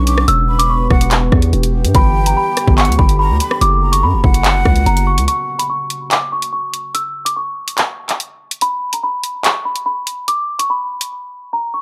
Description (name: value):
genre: hip hop, drill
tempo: 144 BPM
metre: 4/4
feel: half-time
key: unclear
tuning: A4 = 440 Hz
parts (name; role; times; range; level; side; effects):
- small celesta; melody; 0.0-11.8 s; A#5 to E6; -20 LUFS; equal; low-pass filter, digital delay
- breathy mellow silver concert flute; second line; 0.0-5.2 s; F#5 to D6; -25 LUFS; equal; digital delay
- deep dark ambient pad; sustained chords; 0.0-5.3 s; C#3 to G4; -27 LUFS; equal; chorus, built-in reverb
- distorted 808-style bass; bass; 0.0-5.3 s; E1 to G2; -17 LUFS; equal; distortion
- drill drum kit; drums; 0.1-11.1 s; handclaps, hi-hat, kick drum, rim click; -18 LUFS; equal; none
room: little or no reverb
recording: none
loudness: -16 LUFS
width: mono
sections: 0.0-5.3 A section; 5.3-11.8 B section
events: break 5.3-11.8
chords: 0.3 Em; 1.9 G; 3.6 F#; 5.3 N.C.